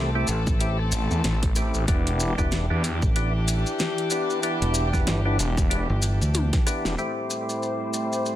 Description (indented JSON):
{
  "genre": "glitch hop",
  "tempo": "94 BPM",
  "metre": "4/4",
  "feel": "swing 58% on 16ths",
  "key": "A minor",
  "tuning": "A4 = 438 Hz",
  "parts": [
    { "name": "warm studio string section", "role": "sustained chords", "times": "0.0-8.4 s", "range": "A2 to C5", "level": "-30 LUFS", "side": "left 1 dB", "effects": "sidechain pumping, low-pass filter" },
    { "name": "percussive tonewheel organ", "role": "stabs", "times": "0.0-8.4 s", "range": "A3 to G4", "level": "-29 LUFS", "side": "equal", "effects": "overdrive, slow rotary speaker, vintage 12-bit sampler grit, sidechain pumping, digital delay" },
    { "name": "fingered electric bass", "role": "bass", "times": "0.0-6.5 s", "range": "E1 to D2", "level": "-24 LUFS", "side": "equal", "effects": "none" },
    { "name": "pop drum kit", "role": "drums", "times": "0.3-7.0 s", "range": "hi-hat, rim click, snare drum, toms", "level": "-30 LUFS", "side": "equal", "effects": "studio reverb" },
    { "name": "maracas", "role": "percussion", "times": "0.3-8.4 s", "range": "none", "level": "-32 LUFS", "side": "left 2 dB", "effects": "none" },
    { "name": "electronic kick drum", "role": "drums", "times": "0.5-6.6 s", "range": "none", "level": "-24 LUFS", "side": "equal", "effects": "studio reverb" },
    { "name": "phased detuned saw bass", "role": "bass", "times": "0.9-7.0 s", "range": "E1 to E2", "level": "-25 LUFS", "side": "equal", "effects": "phaser, tube saturation" }
  ],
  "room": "digital ambience",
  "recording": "none",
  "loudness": "-22 LUFS",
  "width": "side -12 dB against mid",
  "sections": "0.0-7.0 A section; 7.0-8.4 B section",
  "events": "drum fill 6.3-7.0; band accent 6.8-7.1",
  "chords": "0.0 Am7; 1.9 Em7; 7.0 Am7",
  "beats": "0.60 1.24 | 1.88 2.52 3.16 3.79 | 4.43 5.07 5.71 6.35 | 6.99 7.62 8.26"
}